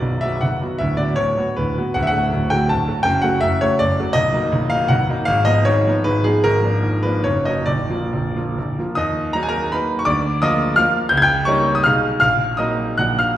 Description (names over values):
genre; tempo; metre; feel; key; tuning
classical, romantic triple-time dance for piano with dotted rhythms; 126-177 BPM; 3/4; rubato; Eb minor from 4.2 s; A4 = 441 Hz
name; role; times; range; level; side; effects
clear concert grand piano; solo; 0.0-13.4 s; Bb0 to Ab6; -16 LUFS; equal; none
room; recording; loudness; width
wet recital hall reverb, RT60 1.4 s; heard from further back in the room; -16 LUFS; side -12 dB against mid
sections
0.0-9.0 A section; 9.0-13.4 B section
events
none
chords
0.0 Bm; 0.8 Bm/D; 1.9 D; 3.1 D/F#; 4.2 Bmaj7; 5.3 Fm7b5/Ab; 6.4 Bb7/Ab; 7.3 Ebm/Gb; 7.7 Bb; 9.0 Ebm; 10.1 Bb/D; 11.1 Eb7/Db; 11.8 Abm/Cb; 12.2 Ebm/Bb; 13.0 Bb